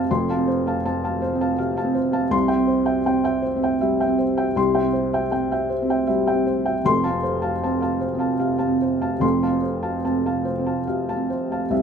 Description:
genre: neoclassical minimalist piano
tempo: 71-81 BPM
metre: 3/4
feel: rubato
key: unclear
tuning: A4 = 440 Hz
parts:
  - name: felt-muted upright piano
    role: solo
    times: 0.0-11.8 s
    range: F1 to C6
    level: -19 LUFS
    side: equal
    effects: none
room: moderate small room reverb, RT60 0.5 s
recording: minimal, uncompressed stereo recording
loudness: -19 LUFS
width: side -7 dB against mid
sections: 0.0-11.7 A section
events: none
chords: 0.0 F; 2.3 C; 6.9 F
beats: | 0.09 0.84 1.58 | 2.33 3.07 3.82 | 4.57 5.33 6.09 | 6.85 7.62 8.40 | 9.22 10.06 10.89 | 11.71

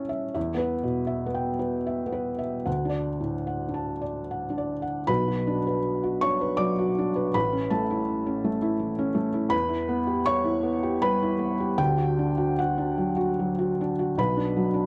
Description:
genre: neoclassical minimalist piano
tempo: 73-83 BPM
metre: 3/4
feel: rubato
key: B minor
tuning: A4 = 438 Hz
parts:
  - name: felt-muted upright piano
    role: solo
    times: 0.0-14.9 s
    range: A1 to D6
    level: -26 LUFS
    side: equal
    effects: none
room: studio reverb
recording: dry, close 1970s-style studio recording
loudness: -26 LUFS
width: mono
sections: 0.0-5.1 A section; 5.1-14.9 B section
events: none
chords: 0.4 Em; 2.7 D; 5.1 Bm; 7.3 A; 9.5 Em; 11.8 D; 14.2 Bm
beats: | 0.36 1.10 1.86 | 2.66 3.48 4.30 | 5.09 5.85 6.60 | 7.34 8.07 8.80 | 9.52 10.26 11.02 | 11.79 12.58 13.37 | 14.18

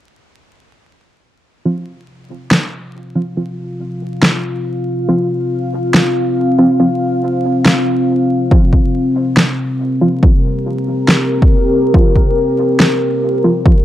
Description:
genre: deep dubstep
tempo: 140 BPM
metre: 4/4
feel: swing 58% on 16ths, half-time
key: unclear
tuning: A4 = 441 Hz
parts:
  - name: deep dark ambient pad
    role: sustained chords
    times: 3.3-13.8 s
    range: C4 to F5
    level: -15 LUFS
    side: left 1 dB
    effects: chorus, built-in reverb
  - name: filtered dub chord stab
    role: stabs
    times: 1.7-13.7 s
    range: F3 to F4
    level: -17 LUFS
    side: right 1 dB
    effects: chorus, dub echo
  - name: electronic snare drum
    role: drums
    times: 2.5-12.9 s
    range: none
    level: -12 LUFS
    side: equal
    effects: overdrive
  - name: electronic kick drum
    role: drums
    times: 8.5-13.8 s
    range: none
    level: -10 LUFS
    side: equal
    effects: overdrive
room: moderate spring reverb, RT60 1.2 s, digital ambience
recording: dry, gritty hardware recording, transformer saturation, vinyl crackle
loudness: -12 LUFS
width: side -13 dB against mid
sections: 1.7-13.8 A section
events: none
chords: 1.7 F5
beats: | 1.66 2.08 2.51 2.94 | 3.37 3.80 4.23 4.66 | 5.08 5.51 5.94 6.37 | 6.80 7.23 7.66 8.08 | 8.51 8.94 9.37 9.80 | 10.23 10.66 11.08 11.51 | 11.94 12.37 12.80 13.23 | 13.66

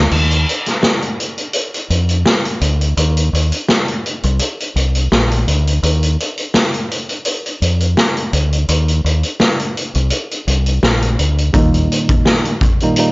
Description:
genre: hip hop, boom-bap hip-hop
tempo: 84 BPM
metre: 4/4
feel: swing 55% on 16ths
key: unclear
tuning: A4 = 439 Hz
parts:
  - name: deep dub fingered electric bass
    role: bass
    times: 0.0-11.9 s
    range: Bb1 to F2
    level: -14 LUFS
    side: equal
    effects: none
  - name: raw garage drum kit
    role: drums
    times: 0.1-13.1 s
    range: crash cymbal, hi-hat, kick drum, snare drum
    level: -16 LUFS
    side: equal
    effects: vintage 12-bit sampler grit
  - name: tine electric piano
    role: accompaniment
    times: 11.5-13.1 s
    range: Bb2 to Eb4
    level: -16 LUFS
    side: right 1 dB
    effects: overdrive, high-pass filter, low-pass filter
room: small room ambience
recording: dry, gritty hardware recording, nothing above 7.5 kHz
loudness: -13 LUFS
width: side -26 dB against mid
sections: 0.1-13.1 A section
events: break 0.1-11.5; kick muted 10.1-11.5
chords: 0.1 Dm; 3.0 Bbadd9; 5.8 Dm; 8.7 Bbadd9; 11.5 Eb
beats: | 0.11 0.83 1.54 2.26 | 2.97 3.69 4.40 5.11 | 5.83 6.54 7.26 7.97 | 8.69 9.40 10.11 10.83 | 11.54 12.26 12.97

